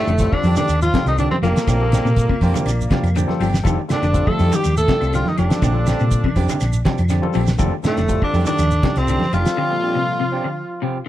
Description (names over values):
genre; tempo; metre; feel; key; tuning
afrobeat; 122 BPM; 4/4; straight; F mixolydian; A4 = 440 Hz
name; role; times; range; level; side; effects
raspy tenor saxophone; melody; 0.0-11.0 s; A3 to A4; -23 LUFS; equal; none
clear trumpet; second line; 0.0-11.0 s; A3 to A4; -31 LUFS; right 3 dB; none
warm bass trombone; second line; 0.0-11.0 s; A2 to A3; -30 LUFS; right 5 dB; none
barky tine electric piano; accompaniment; 0.0-10.2 s; Bb2 to G5; -29 LUFS; left 10 dB; none
electric guitar through a small old amp; stabs; 0.0-11.1 s; Eb3 to G4; -28 LUFS; right 6 dB; none
clean electric guitar; arpeggios; 0.1-11.1 s; C3 to F3; -25 LUFS; left 5 dB; ensemble chorus
hollow-body short-scale fingered electric bass; bass; 0.1-9.4 s; F1 to Bb2; -19 LUFS; equal; none
damped 70s drum kit; drums; 0.1-9.6 s; hi-hat, kick drum, snare drum; -20 LUFS; equal; none
shekere; percussion; 0.1-9.6 s; none; -30 LUFS; right 3 dB; none
claves; percussion; 0.3-9.5 s; none; -40 LUFS; left 2 dB; none
congas; percussion; 0.5-9.3 s; none; -25 LUFS; right 2 dB; none
room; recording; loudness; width
studio ambience; dry, close 1970s-style studio recording; -16 LUFS; side -13 dB against mid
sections
0.0-11.1 A section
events
tine electric piano fill 2.2-3.6; break 9.6-11.1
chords
0.0 F13; 1.7 Bb69; 3.6 F13; 5.6 Bb69; 7.6 F13; 9.6 Bb69